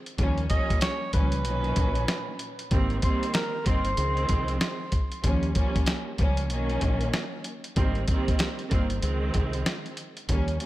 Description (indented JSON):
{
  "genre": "hip hop, boom-bap hip-hop",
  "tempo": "95 BPM",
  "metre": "4/4",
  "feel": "swing 62% on 16ths",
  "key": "Ab major",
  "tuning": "A4 = 442 Hz",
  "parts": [
    { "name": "dusty soul sampler-style drum kit", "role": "drums", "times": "0.1-10.7 s", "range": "hi-hat, kick drum, snare drum", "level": "-26 LUFS", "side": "equal", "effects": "none" },
    { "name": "dark studio string section", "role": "accompaniment", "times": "0.2-10.7 s", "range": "Bb2 to Db4", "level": "-30 LUFS", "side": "right 2 dB", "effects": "cassette tape, high-pass filter, low-pass filter" },
    { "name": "deep dub fingered electric bass", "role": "bass", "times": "0.2-10.6 s", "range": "G1 to Eb2", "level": "-29 LUFS", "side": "equal", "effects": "none" },
    { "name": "breathy tenor saxophone", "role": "melody", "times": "0.5-4.6 s", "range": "Bb4 to Eb5", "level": "-32 LUFS", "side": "right 1 dB", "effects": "high-pass filter, low-pass filter, digital delay" }
  ],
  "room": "digital ambience",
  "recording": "none",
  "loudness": "-24 LUFS",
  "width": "side -16 dB against mid",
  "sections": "0.0-10.3 A section",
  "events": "none",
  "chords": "0.2 Eb7; 1.5 Bmaj7; 2.7 Abmaj7; 4.0 Dbmaj7; 5.2 Eb7; 6.5 Bmaj7; 7.8 Abmaj7; 9.0 Dbmaj7"
}